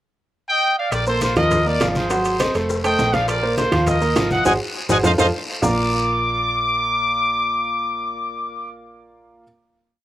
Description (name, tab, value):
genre	latin, salsa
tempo	204 BPM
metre	4/4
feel	straight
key	Bb major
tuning	A4 = 440 Hz
part	clear trumpet section	melody	0.5-8.7 s	F4 to D6	-20 LUFS	equal	slapback echo
part	hollow-body short-scale fingered electric bass	bass	0.9-9.4 s	F1 to F2	-25 LUFS	equal	none
part	bongos	percussion	0.9-5.7 s	none	-30 LUFS	left 5 dB	none
part	congas	percussion	0.9-5.7 s	none	-27 LUFS	left 1 dB	none
part	guiro	percussion	0.9-5.7 s	none	-31 LUFS	left 2 dB	slapback echo
part	maracas	percussion	0.9-5.7 s	none	-34 LUFS	left 3 dB	none
part	timbales	percussion	0.9-5.7 s	none	-29 LUFS	right 6 dB	none
part	clear baby grand piano	accompaniment	1.1-9.4 s	F3 to Bb5	-22 LUFS	right 2 dB	slapback echo
room	little or no reverb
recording	recorded outdoors, with no room sound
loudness	-17 LUFS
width	side -13 dB against mid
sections	0.0-0.9 pickup bar; 0.9-5.6 montuno (vamp); 5.6-8.0 final chord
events	drum fill 4.5-5.6; band accent 4.5-5.6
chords	0.0 N.C.; 0.9 Bbsus2; 1.5 Ebsus2; 2.1 Ab7; 2.7 F7; 3.3 Bbsus2; 3.9 Ebsus2; 4.5 Ab7; 5.0 F; 5.6 Bb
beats	0.04 0.33 0.63 | 0.92 1.22 1.51 1.81 | 2.10 2.40 2.69 2.99 | 3.28 3.58 3.87 4.16 | 4.46 4.75 5.04 5.33 | 5.63 5.92 6.21 6.50 | 6.80 7.09 7.38 7.68